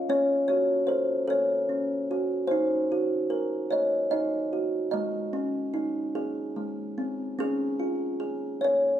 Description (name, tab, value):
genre	children's music, lullaby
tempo	49 BPM (dotted quarters)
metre	6/8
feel	straight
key	Db major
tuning	A4 = 441 Hz
part	kalimba	solo	0.0-9.0 s	Ab3 to Eb5	-25 LUFS	equal	none
room	moderate recital hall reverb, RT60 1.5 s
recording	none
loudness	-25 LUFS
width	side -10 dB against mid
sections	0.0-9.0 A section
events	none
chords	0.1 Gbm/Db; 2.5 Ebm; 4.9 Absus4; 6.2 Ab; 7.4 Db